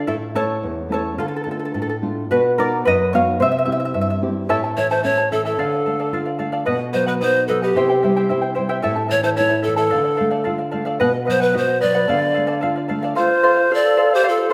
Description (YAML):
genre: andean folk, Andean ensemble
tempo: 110 BPM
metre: 2/4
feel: straight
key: D dorian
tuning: A4 = 437 Hz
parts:
  - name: charango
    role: accompaniment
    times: 0.0-14.5 s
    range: E4 to A5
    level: -23 LUFS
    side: equal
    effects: none
  - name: nylon-string guitar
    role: accompaniment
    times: 0.0-13.2 s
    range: E2 to G4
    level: -26 LUFS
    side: equal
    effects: none
  - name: pan flute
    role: melody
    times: 4.8-14.5 s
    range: G4 to D5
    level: -21 LUFS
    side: equal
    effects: none
  - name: mellow large quena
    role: second line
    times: 13.2-14.5 s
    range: F4 to A4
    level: -24 LUFS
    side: equal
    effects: none
room: wet recital hall reverb, RT60 1.7 s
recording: none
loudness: -19 LUFS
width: mono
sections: 0.1-4.5 A section; 4.5-13.2 B section; 13.2-14.5 C section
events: charango solo 0.1-4.5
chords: 0.1 A; 1.2 Dm; 2.3 B; 3.4 C; 4.5 A; 5.6 Dm; 6.7 B; 7.8 C; 8.8 A; 9.9 Dm; 11.0 B; 12.1 Dm; 13.2 F